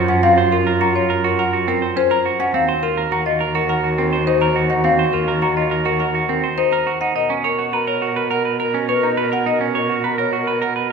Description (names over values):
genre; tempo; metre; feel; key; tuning
classical, minimalist pattern music; 104 BPM; 4/4; straight; B major from 7.2 s; A4 = 440 Hz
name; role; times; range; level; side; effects
bright clarinet; second line; 0.0-10.9 s; F4 to A#4; -24 LUFS; right 2 dB; none
clean electric guitar; arpeggios; 0.0-10.9 s; C4 to C#5; -20 LUFS; right 6 dB; none
rich cello; bass; 0.0-10.9 s; Eb2 to B2; -24 LUFS; right 1 dB; none
marimba with medium mallets; melody; 0.1-10.8 s; Bb4 to Bb5; -20 LUFS; left 4 dB; none
room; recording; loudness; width
wet scoring stage reverb, RT60 1.4 s; minimal, uncompressed stereo recording; -16 LUFS; side -5 dB against mid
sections
0.0-7.2 A section; 7.2-10.9 B section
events
none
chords
0.0 Gbmaj7; 2.5 Ebmadd9; 7.2 Bmaj7